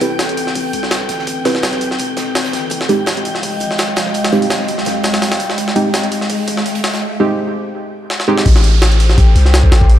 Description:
drum and bass, jungle; 167 BPM; 4/4; swing 54% on 16ths; A4 = 440 Hz
warbly tape-like pad; sustained chords; 0.0-10.0 s; Ab3 to G5; -21 LUFS; equal; chorus, built-in reverb, vintage 12-bit sampler grit
deep mellow chord stab; stabs; 0.0-8.4 s; Ab3 to B4; -18 LUFS; right 2 dB; chorus, dub echo
long sustained 808-style bass; bass; 0.0-10.0 s; Eb1 to F2; -15 LUFS; equal; high-pass filter
jungle sampler-style drum kit; drums; 0.0-10.0 s; hi-hat, kick drum, snare drum; -16 LUFS; equal; high-pass filter on hats, high-pass filter on snare, high-pass filter on kick, high-pass filter on room
oversized low-tuned drum kit; drums; 0.0-7.0 s; hi-hat, snare drum; -29 LUFS; right 2 dB; high-pass filter on hats, high-pass filter on snare, high-pass filter on room
riser and downlifter; sound effects; 0.5-10.0 s; -27 LUFS; right 1 dB
wind-like tuned noise texture; texture; 0.0-10.0 s; G5 to C7; -28 LUFS; equal; built-in reverb
light reverb; -13 LUFS; side -11 dB against mid
0.0-8.5 A section; 8.5-10.0 B section
build-up 0.0-8.5; filter sweep on synth stab 0.0-8.5; riser 0.5-7.0; drum fill 8.1-8.5; drop 8.5-10.0
0.0 Am9; 2.7 Fm9; 8.5 Am7

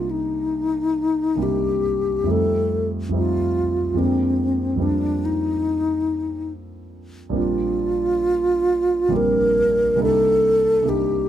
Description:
classical, impressionist duo for alto flute and grand piano; 70 BPM; 3/4; uneven beats, rubato; C dorian; A4 = 442 Hz
hollow alto flute; melody; 0.0-11.3 s; C4 to Bb4; -20 LUFS; left 1 dB
warm grand piano; accompaniment; 0.0-11.3 s; Bb1 to Eb4; -24 LUFS; right 2 dB
light reverb; close, detailed microphones; -18 LUFS; side -11 dB against mid
0.0-11.3 A section
0.0 Ebmaj7/C; 2.3 F9; 4.0 Bb9/F; 4.8 Cm9/F; 7.4 Bb69; 10.0 Cm9

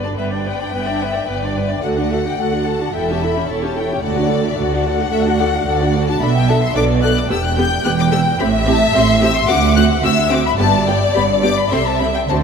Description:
quick classical-period movement for string orchestra; 109 BPM; 4/4; rubato; G major; A4 = 441 Hz
warm studio violin section; melody; 0.0-12.4 s; D5 to G6; -22 LUFS; left 8 dB
warm studio violin section; second line; 0.0-12.4 s; C5 to G5; -20 LUFS; left 4 dB
rich studio viola section; accompaniment; 0.0-12.4 s; B3 to D5; -20 LUFS; equal
warm studio cello section; bass; 0.0-12.4 s; D2 to D3; -21 LUFS; right 5 dB
warm studio double bass section; bass; 0.0-12.4 s; E1 to D2; -22 LUFS; right 4 dB
wet cathedral reverb, RT60 5.4 s; in a vast, echoing space; -14 LUFS; side -6 dB against mid
0.0-12.4 A section
0.0 G; 1.8 D; 2.9 A7/E; 4.0 D; 6.2 Bm7; 7.3 Em; 8.4 Am7; 9.5 D7; 10.6 G; 11.7 Am/C

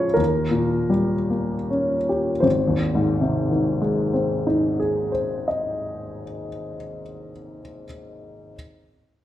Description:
classical, romantic nocturne for solo piano; 24-32 BPM (dotted quarters); 6/8; rubato; Ab major; A4 = 442 Hz
warm upright piano; solo; 0.0-8.6 s; Ab1 to F5; -21 LUFS; left 1 dB
wet recital hall reverb, RT60 1.3 s; -20 LUFS; side -12 dB against mid
0.0-2.4 A section; 2.4-6.4 B section
slowing down 0.0-2.4
0.2 Eb7; 2.4 Ab

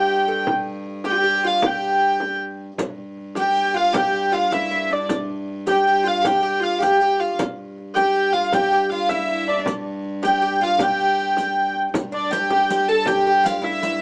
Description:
medieval dance; 105 BPM (dotted quarters); 6/8; straight; A4 = 440 Hz
warm hurdy-gurdy; melody; 0.0-14.0 s; D5 to A5; -22 LUFS; equal
clear fiddle; second line; 0.0-14.0 s; D4 to A4; -30 LUFS; equal
oud; second line; 0.0-14.0 s; D4 to A4; -28 LUFS; equal
warm viola da gamba; drone; 0.0-14.0 s; G2; -34 LUFS; equal
frame drum; percussion; 0.3-13.9 s; -29 LUFS; equal
riq; percussion; 2.8-14.0 s; -35 LUFS; equal
light reverb; small speaker sound; -20 LUFS; mono
0.0-2.8 A section; 2.8-11.9 A section; 11.9-14.0 B section

